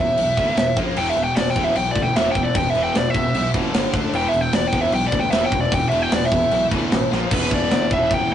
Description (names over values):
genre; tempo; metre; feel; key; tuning
hard rock; 152 BPM; 4/4; straight; E minor; A4 = 441 Hz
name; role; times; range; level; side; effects
high-gain lead guitar; melody; 0.0-8.3 s; B4 to G5; -20 LUFS; equal; distortion
overdriven tonewheel organ; sustained chords; 0.0-8.3 s; E3 to E5; -34 LUFS; left 2 dB; none
cranked stack guitar; riff; 0.0-8.3 s; E2 to D4; -28 LUFS; left 3 dB; overdrive
distorted electric guitar; riff; 0.0-8.3 s; E2 to D4; -27 LUFS; right 4 dB; overdrive
picked electric bass; bass; 0.0-8.3 s; E1 to E2; -29 LUFS; equal; none
tight metal drum kit; drums; 0.2-8.2 s; crash cymbal, kick drum, snare drum; -22 LUFS; equal; none
distorted electric guitar; riff; 1.0-8.3 s; E2 to E3; -29 LUFS; right 1 dB; overdrive
room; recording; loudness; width
moderate booth ambience, RT60 0.3 s; rough rehearsal-room recording, tube saturation, nothing above 10.3 kHz; -17 LUFS; side -10 dB against mid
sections
0.0-7.3 A section; 7.3-8.3 B section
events
lead electric guitar solo 0.0-7.3; drum fill 7.1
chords
0.0 E5; 0.8 A#5; 1.0 E5; 3.7 G5; 3.9 D5; 4.1 E5; 7.1 A#5; 7.3 E5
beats
0.18 0.58 | 0.97 1.37 1.76 2.16 | 2.56 2.95 3.35 3.74 | 4.14 4.53 4.93 5.33 | 5.72 6.12 6.52 6.92 | 7.32 7.71 8.11